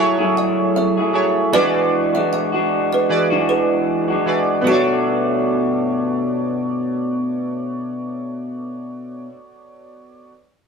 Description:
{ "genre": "indie pop", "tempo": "77 BPM", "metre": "4/4", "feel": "swing 55% on 16ths", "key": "B dorian", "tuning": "A4 = 445 Hz", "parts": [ { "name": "kalimba", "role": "second line", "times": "0.0-7.0 s", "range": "F#4 to F#5", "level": "-23 LUFS", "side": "right 3 dB", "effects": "none" }, { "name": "chorused retro synth keys", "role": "accompaniment", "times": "0.0-10.3 s", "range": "E3 to D5", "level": "-22 LUFS", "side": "right 3 dB", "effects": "none" }, { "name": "electric guitar through a small old amp", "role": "accompaniment", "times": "0.0-9.3 s", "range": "B2 to G#4", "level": "-19 LUFS", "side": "left 1 dB", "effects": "warbly pitch drift" } ], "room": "wet small room reverb, RT60 0.6 s", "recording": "band playing live in one room", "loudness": "-16 LUFS", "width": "side -5 dB against mid", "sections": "0.0-4.7 A section; 4.7-7.8 B section", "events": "none", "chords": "0.0 F#m9; 1.5 E9; 4.7 Bm7" }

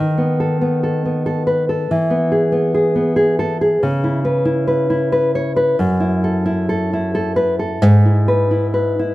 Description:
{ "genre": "romantic piece for solo classical guitar", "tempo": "77-96 BPM", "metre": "3/4", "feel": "rubato", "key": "E major", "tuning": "A4 = 439 Hz", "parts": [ { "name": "nylon-string guitar", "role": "solo", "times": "0.0-9.1 s", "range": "F#2 to C#5", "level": "-14 LUFS", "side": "equal", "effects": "none" } ], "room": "moderate recital hall reverb, RT60 1.6 s", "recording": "none", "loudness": "-14 LUFS", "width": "side -17 dB against mid", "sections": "0.0-9.1 A section", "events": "none", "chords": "0.0 B7/D#; 1.9 E; 3.8 C#m7; 5.8 F#m7; 7.8 E/G#" }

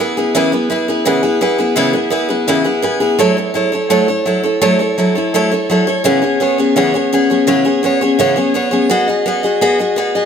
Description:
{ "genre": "rock", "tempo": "168 BPM", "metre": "4/4", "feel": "straight", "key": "E major", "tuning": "A4 = 435 Hz", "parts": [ { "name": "picked steel-string acoustic guitar", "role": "solo", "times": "0.0-10.3 s", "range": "C#3 to D#5", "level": "-12 LUFS", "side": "equal", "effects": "tape echo" } ], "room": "moderate echo chamber reverb, RT60 1.7 s", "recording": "none", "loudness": "-12 LUFS", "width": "side -7 dB against mid", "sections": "0.0-10.3 A section", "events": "none", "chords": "0.0 E6; 3.2 A6; 6.0 E6; 8.9 B6" }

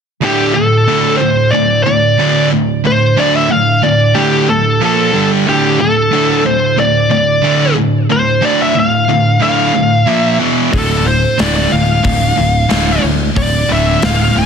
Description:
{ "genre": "hard rock", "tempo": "91 BPM", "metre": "4/4", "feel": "straight", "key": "D minor", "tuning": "A4 = 440 Hz", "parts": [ { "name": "bluesy overdriven lead guitar", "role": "melody", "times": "0.2-14.5 s", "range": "G4 to A5", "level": "-14 LUFS", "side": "left 1 dB", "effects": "distortion, tape echo" }, { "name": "sludgy distorted guitar", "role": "riff", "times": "0.2-14.5 s", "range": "D2 to Bb3", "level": "-15 LUFS", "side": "right 10 dB", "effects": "overdrive" }, { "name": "tight distorted guitar", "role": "riff", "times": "0.2-14.5 s", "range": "D2 to Bb3", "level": "-16 LUFS", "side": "left 9 dB", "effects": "distortion" }, { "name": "picked electric bass", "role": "bass", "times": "10.7-14.5 s", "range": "D1 to D2", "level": "-16 LUFS", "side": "equal", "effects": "none" }, { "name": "big rock drum kit", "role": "drums", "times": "10.7-14.2 s", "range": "hi-hat, kick drum, snare drum", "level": "-17 LUFS", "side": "left 1 dB", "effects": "none" } ], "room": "light reverb, studio ambience", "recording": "dense, heavily limited modern master", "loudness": "-10 LUFS", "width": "side -6 dB against mid", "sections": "0.2-14.5 A section", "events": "none", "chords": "0.2 D5; 4.8 Bb5; 5.1 G5; 5.5 Dm; 10.1 Bb5; 10.4 E5; 10.7 Dm" }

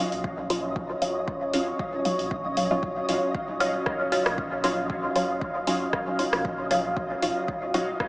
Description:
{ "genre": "dub techno", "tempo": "116 BPM", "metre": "4/4", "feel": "swing 54% on 16ths", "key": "Eb minor", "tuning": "A4 = 441 Hz", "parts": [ { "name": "deep dark ambient pad", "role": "sustained chords", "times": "0.1-8.1 s", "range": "Db4 to F5", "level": "-30 LUFS", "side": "equal", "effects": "chorus, built-in reverb, sidechain pumping" }, { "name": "filtered dub chord stab", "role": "stabs", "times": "0.0-7.9 s", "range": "Gb3 to F4", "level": "-27 LUFS", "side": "equal", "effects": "phaser, sidechain pumping, dub echo" }, { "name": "soft dub sub bass", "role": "bass", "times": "0.0-8.1 s", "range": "Eb1 to Bb1", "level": "-43 LUFS", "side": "equal", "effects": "tube saturation, sidechain pumping" }, { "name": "flickering grainy texture", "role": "texture", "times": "0.0-8.1 s", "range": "Eb5", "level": "-36 LUFS", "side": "equal", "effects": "built-in reverb, ensemble chorus, sidechain pumping" }, { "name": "deep house drum kit", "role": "drums", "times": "0.1-8.1 s", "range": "hi-hat, rim click", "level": "-32 LUFS", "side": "equal", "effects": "overdrive, dub echo" }, { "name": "electronic kick drum", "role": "drums", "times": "0.2-8.1 s", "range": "none", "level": "-34 LUFS", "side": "equal", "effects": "overdrive" }, { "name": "warbly lo-fi synth keys", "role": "riff", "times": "1.5-7.9 s", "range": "Gb4 to F5", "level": "-36 LUFS", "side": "equal", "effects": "chorus, sidechain pumping, dub echo" } ], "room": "wet cathedral reverb, RT60 7.3 s", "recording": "dreamy mix soaked in reverb, small speaker sound", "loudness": "-24 LUFS", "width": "side -23 dB against mid", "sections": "0.0-8.1 A section", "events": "filter sweep on synth stab 0.0-8.1", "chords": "0.0 Ebm9" }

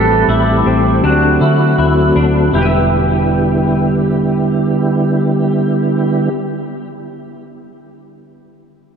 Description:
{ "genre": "dream pop", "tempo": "80 BPM", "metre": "4/4", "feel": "straight", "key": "E minor", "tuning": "A4 = 441 Hz", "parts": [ { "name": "pedal steel guitar", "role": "melody", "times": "0.0-6.3 s", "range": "F#4 to A4", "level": "-19 LUFS", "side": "right 2 dB", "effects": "lush chorus, ping-pong delay" }, { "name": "mellow tonewheel organ", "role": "sustained chords", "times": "0.0-6.3 s", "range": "D3 to G4", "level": "-14 LUFS", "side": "right 1 dB", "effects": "chorus vibrato, slow rotary speaker" }, { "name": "semi-hollow electric guitar", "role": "arpeggios", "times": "0.0-6.6 s", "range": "C4 to E5", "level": "-20 LUFS", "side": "left 4 dB", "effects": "ensemble chorus, ping-pong delay" }, { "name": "vintage muted fingered electric bass", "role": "bass", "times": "0.0-6.5 s", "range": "E1 to D3", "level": "-18 LUFS", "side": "equal", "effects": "none" } ], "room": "wet cathedral reverb, RT60 4.9 s", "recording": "dreamy mix soaked in reverb", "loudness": "-11 LUFS", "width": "side -7 dB against mid", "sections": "0.0-2.5 A section; 2.5-5.5 B section", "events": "none", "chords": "0.0 Am7; 1.0 D7; 2.5 Em7" }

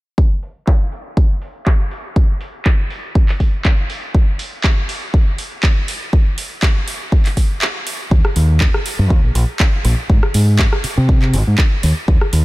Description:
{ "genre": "filtered disco house", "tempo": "121 BPM", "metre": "4/4", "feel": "swing 54% on 16ths", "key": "Eb major", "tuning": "A4 = 440 Hz", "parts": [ { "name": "electronic kick drum", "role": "drums", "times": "0.2-12.2 s", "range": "none", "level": "-14 LUFS", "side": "equal", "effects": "studio reverb" }, { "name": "house drum kit", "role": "drums", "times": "0.4-12.4 s", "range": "handclaps, hi-hat, rim click", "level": "-22 LUFS", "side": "equal", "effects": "sidechain pumping on hats, low-pass filter on hats, studio reverb, low-pass filter on snare" }, { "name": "deep dub fingered electric bass", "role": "bass", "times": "8.1-12.4 s", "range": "Ab1 to C3", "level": "-14 LUFS", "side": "equal", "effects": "tube saturation, sidechain pumping, low-pass filter" } ], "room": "little or no reverb", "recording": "none", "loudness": "-14 LUFS", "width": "side -20 dB against mid", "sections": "0.2-8.1 A section; 8.1-12.4 B section", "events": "filter sweep on drum 0.2-8.1; filter sweep 0.2-8.1; break 7.6-8.1; filter sweep on fingered electric bass 8.1-12.4", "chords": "none" }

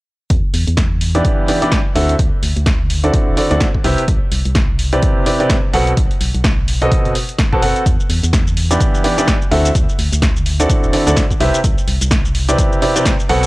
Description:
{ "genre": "piano house", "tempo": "127 BPM", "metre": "4/4", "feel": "swing 58% on 16ths", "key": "E minor", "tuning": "A4 = 440 Hz", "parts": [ { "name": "organ-like FM bass", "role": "bass", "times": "0.3-13.5 s", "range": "D1 to E2", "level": "-18 LUFS", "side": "equal", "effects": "sidechain pumping" }, { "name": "electronic kick drum", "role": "drums", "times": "0.3-13.2 s", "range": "none", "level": "-16 LUFS", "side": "equal", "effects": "none" }, { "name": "punchy analog drum machine", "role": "drums", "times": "0.3-13.5 s", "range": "hi-hat, shaker, snare drum", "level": "-21 LUFS", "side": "equal", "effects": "none" }, { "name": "clear grand piano", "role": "riff", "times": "1.1-13.5 s", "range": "B2 to A5", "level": "-16 LUFS", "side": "equal", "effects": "sidechain pumping" } ], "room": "little or no reverb", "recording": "dry, gritty hardware recording", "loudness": "-12 LUFS", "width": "side -20 dB against mid", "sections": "0.3-13.5 A section", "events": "none", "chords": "0.3 Em7; 2.0 D9; 3.8 Cmaj9; 5.7 B7b9; 7.9 Em7; 9.5 D9; 11.4 Cmaj9" }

